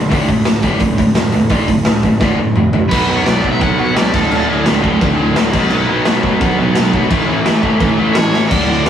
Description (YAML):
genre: punk rock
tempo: 172 BPM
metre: 4/4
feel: straight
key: D major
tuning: A4 = 440 Hz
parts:
  - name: cranked stack guitar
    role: riff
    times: 0.0-8.9 s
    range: D2 to B3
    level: -18 LUFS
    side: right 4 dB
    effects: overdrive
  - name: tight distorted guitar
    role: riff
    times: 0.0-8.9 s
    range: D2 to B3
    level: -19 LUFS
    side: left 5 dB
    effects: distortion
  - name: fuzz picked electric bass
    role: bass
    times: 0.0-8.9 s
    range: D1 to C#2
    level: -22 LUFS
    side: equal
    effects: overdrive
  - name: raw garage drum kit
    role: drums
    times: 0.1-8.9 s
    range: crash cymbal, hi-hat, kick drum, snare drum, toms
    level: -15 LUFS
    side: equal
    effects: none
  - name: overdriven semi-hollow guitar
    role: melody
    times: 2.9-4.5, 8.1-8.9 s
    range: A4 to F#5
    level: -20 LUFS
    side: right 1 dB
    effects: none
  - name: crunchy overdriven guitar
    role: riff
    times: 2.9-8.9 s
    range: D2 to B3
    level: -20 LUFS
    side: right 1 dB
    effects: none
room: light reverb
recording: rough rehearsal-room recording, warm saturation, small room ambience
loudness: -11 LUFS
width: side -9 dB against mid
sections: 0.0-2.9 A section; 2.9-8.5 B section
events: drum fill 2.2-2.9, 8.3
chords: 0.1 D; 2.9 B5; 4.1 D5; 5.5 B5; 7.1 A